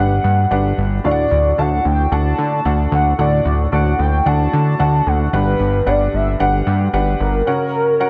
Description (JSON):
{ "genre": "piano-driven pop", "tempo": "112 BPM", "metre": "4/4", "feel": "straight", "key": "unclear", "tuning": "A4 = 440 Hz", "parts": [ { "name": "warm velvety synth lead", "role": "melody", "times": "0.0-8.1 s", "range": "A#4 to A5", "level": "-22 LUFS", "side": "equal", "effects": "chorus" }, { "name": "clear upright piano", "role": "accompaniment", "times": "0.0-8.1 s", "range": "G2 to A5", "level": "-23 LUFS", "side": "equal", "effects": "none" }, { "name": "fat analog bass", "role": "bass", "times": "0.0-7.4 s", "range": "G1 to D3", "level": "-19 LUFS", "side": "equal", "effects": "none" } ], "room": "light reverb", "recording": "none", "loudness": "-16 LUFS", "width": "mono", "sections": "0.0-8.1 A section", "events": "none", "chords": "0.0 Gmaj7; 1.0 D; 5.3 Gmaj7; 7.5 F#" }